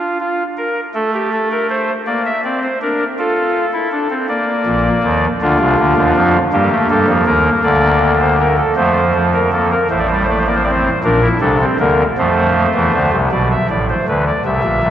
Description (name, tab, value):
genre	classical, baroque-style 3-part fugue for pipe organ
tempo	53 BPM (dotted quarters)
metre	6/8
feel	straight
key	Bb major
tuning	A4 = 440 Hz
part	pipe organ, soft reed	solo	0.0-14.9 s	A1 to E5	-12 LUFS	equal	none
room	wet cathedral reverb, RT60 6.5 s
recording	worn, warbling old tape, cassette tape, warbly pitch drift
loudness	-13 LUFS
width	side -10 dB against mid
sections	0.0-13.3 A section; 13.3-14.9 B section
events	none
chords	0.0 Fsus4; 0.9 Am7; 2.1 Bb; 3.2 F; 4.3 Bb; 5.4 Csus24; 6.5 Eb/G; 7.6 Bb/D; 8.8 F; 9.9 Amadd11; 11.0 Bb; 12.2 F; 13.3 Asus24